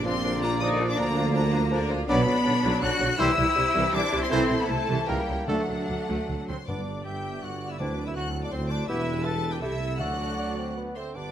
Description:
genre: classical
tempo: 148-168 BPM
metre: 3/4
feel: rubato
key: unclear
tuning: A4 = 438 Hz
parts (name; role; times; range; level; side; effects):
- rich symphonic violin section; melody; 0.0-11.3 s; F#5 to A6; -35 LUFS; left 3 dB; none
- mellow hollow concert flute; second line; 0.0-11.3 s; C5 to F#6; -32 LUFS; left 3 dB; none
- rich symphonic violin section; second line; 0.0-11.3 s; D4 to A5; -37 LUFS; equal; none
- clear symphonic viola section; accompaniment; 0.0-11.0 s; C3 to E5; -35 LUFS; left 1 dB; none
- dark trombone section; sustained chords; 0.0-11.3 s; Bb2 to A3; -37 LUFS; right 3 dB; none
- mellow French horn section; sustained chords; 0.0-11.3 s; G3 to E4; -36 LUFS; left 5 dB; none
- clear trumpet; stabs; 0.0-11.3 s; C4 to D5; -35 LUFS; right 2 dB; none
- clear symphonic cello section; bass; 0.0-11.3 s; D2 to F#4; -32 LUFS; equal; none
- mellow tuba; bass; 0.0-11.3 s; E1 to D2; -33 LUFS; right 3 dB; none
- warm symphonic double bass section; bass; 0.0-11.3 s; E1 to D2; -33 LUFS; right 2 dB; none
- warm clarinet; second line; 0.1-11.3 s; D4 to A4; -37 LUFS; left 1 dB; none
- mellow bassoon; accompaniment; 0.1-11.3 s; F3 to D4; -34 LUFS; right 1 dB; none
- timpani; percussion; 5.5-10.5 s; G2 to D3; -39 LUFS; equal; none
room: moderate recital hall reverb, RT60 1.7 s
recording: none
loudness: -24 LUFS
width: side -10 dB against mid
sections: 0.0-6.7 A section; 6.7-11.3 B section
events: none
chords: 0.0 Bb; 1.0 Bb/D; 2.1 Bm; 3.2 C; 4.3 Am/C; 5.1 C#dim7; 5.5 D; 6.7 G; 7.8 D9; 8.9 Em; 9.6 Am7/C; 10.0 D

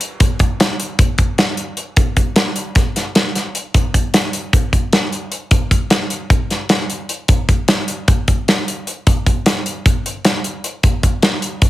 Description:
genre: rock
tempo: 305 BPM (eighths)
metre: 9/8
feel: straight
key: none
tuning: none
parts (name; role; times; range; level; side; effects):
- modern studio drum kit; drums; 0.0-11.7 s; hi-hat, kick drum, snare drum; -14 LUFS; equal; none
room: light reverb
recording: heavily compressed radio sound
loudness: -14 LUFS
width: side -15 dB against mid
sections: 0.0-11.7 A section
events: none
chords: none

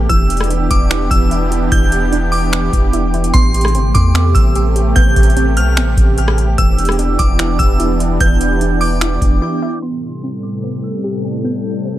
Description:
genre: hip hop, atmospheric cloud-rap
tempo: 148 BPM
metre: 4/4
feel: half-time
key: A minor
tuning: A4 = 444 Hz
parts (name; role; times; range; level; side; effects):
- sweeping resonant pad; sustained chords; 0.0-12.0 s; A2 to A4; -19 LUFS; right 1 dB; chorus, sidechain pumping
- warbly dusty pluck; arpeggios; 0.0-12.0 s; E3 to G4; -26 LUFS; right 2 dB; chorus, ping-pong delay
- long sustained 808-style bass; bass; 0.0-9.4 s; E1 to E2; -16 LUFS; equal; none
- wind-like tuned noise texture; texture; 0.0-12.0 s; B3 to A5; -29 LUFS; left 1 dB; built-in reverb
- glassy synth bell; melody; 0.1-12.0 s; C6 to G6; -20 LUFS; equal; chorus, ping-pong delay
- booming analog drum machine; drums; 0.1-9.4 s; finger snaps, hi-hat, kick drum, rim click; -15 LUFS; equal; overdrive
room: little or no reverb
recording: low-pass filter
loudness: -12 LUFS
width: side -14 dB against mid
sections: 0.0-9.8 A section; 9.8-12.0 B section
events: break 9.4-9.8; filter sweep 9.8-12.0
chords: 0.1 Em7; 3.3 Am9; 6.6 Em7; 9.8 Am9

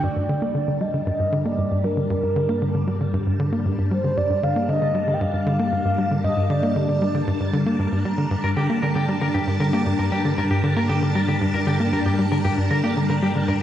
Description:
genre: ambient, sequencer-driven space music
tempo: 116 BPM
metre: 4/4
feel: straight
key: G minor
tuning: A4 = 440 Hz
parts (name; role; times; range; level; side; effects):
- mellow horn-like synth lead; melody; 0.0-8.3 s; Bb4 to Bb5; -26 LUFS; equal; chorus, analog delay
- phased string machine; sustained chords; 0.0-13.6 s; G3 to A5; -26 LUFS; left 1 dB; ensemble chorus, phaser
- tight sequencer bass; riff; 0.0-13.5 s; G2 to Bb3; -22 LUFS; equal; analog delay
- analog drone; bass; 0.9-13.6 s; G2; -28 LUFS; equal; chorus
- electric guitar at the edge of break-up; arpeggios; 8.4-13.5 s; G4 to Bb4; -27 LUFS; left 1 dB; auto-pan, analog delay
room: wet plate reverb, RT60 2.5 s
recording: worn, warbling old tape, cassette tape, warbly pitch drift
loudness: -19 LUFS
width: side -11 dB against mid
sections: 0.0-13.6 A section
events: none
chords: 0.0 Gm

